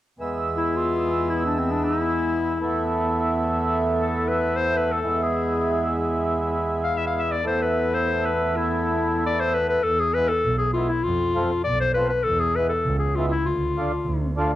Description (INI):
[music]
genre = klezmer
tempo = free time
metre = none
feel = none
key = E phrygian dominant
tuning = A4 = 439 Hz
[part]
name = mellow accordion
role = accompaniment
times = 0.2-14.5 s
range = G#3 to E5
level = -25 LUFS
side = right 2 dB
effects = none
[part]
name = warm double bass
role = bass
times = 0.2-14.4 s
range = B1 to F2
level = -27 LUFS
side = right 2 dB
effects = none
[part]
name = bright clarinet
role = melody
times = 0.6-14.3 s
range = C4 to F5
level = -23 LUFS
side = left 3 dB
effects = cassette tape
[sound]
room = moderate spring reverb, RT60 1.3 s, studio reverb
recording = home recording on cassette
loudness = -21 LUFS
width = side -14 dB against mid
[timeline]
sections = 0.2-9.9 A section; 9.9-14.6 B section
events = none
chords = 0.2 E; 2.6 Asus2/E; 5.0 E; 7.4 Asus2/E; 9.9 E; 11.1 F; 12.3 E; 13.5 Dm